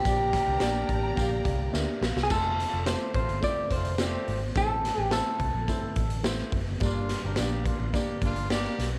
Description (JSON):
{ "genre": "uptempo 1960s-style soul", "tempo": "106 BPM", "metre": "4/4", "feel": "straight", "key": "G dorian", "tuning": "A4 = 441 Hz", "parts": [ { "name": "electric guitar through a small old amp", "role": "melody", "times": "0.0-6.2 s", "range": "G4 to D5", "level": "-32 LUFS", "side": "equal", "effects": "spring reverb" }, { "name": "clear horn section", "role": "second line", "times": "0.0-8.9 s", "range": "A3 to Bb4", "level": "-40 LUFS", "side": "equal", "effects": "none" }, { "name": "clear studio string section", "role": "second line", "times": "0.0-2.3 s", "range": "G4 to Bb5", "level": "-41 LUFS", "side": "equal", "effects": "none" }, { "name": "dark baby grand piano", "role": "accompaniment", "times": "0.0-8.8 s", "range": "G2 to Bb5", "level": "-36 LUFS", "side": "equal", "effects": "none" }, { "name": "vintage muted fingered electric bass", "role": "bass", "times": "0.1-9.0 s", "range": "F1 to D2", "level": "-34 LUFS", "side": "equal", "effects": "none" }, { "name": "raw garage drum kit", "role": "drums", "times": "0.1-8.9 s", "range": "crash cymbal, hi-hat, kick drum, snare drum", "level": "-33 LUFS", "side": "equal", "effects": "none" }, { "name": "tambourine", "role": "percussion", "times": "0.1-8.7 s", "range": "none", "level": "-46 LUFS", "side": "equal", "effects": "none" } ], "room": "little or no reverb", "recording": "none", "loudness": "-28 LUFS", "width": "mono", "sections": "0.0-2.3 A section; 2.3-9.0 B section", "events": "grand piano fill 0.6-2.3; drum fill 1.7-2.3", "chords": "0.0 Gm; 2.3 F; 4.6 Am; 6.8 Gm", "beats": "| 0.05 0.61 1.17 1.74 | 2.30 2.86 3.42 3.99 | 4.55 5.12 5.68 6.24 | 6.81 7.37 7.94 8.50" }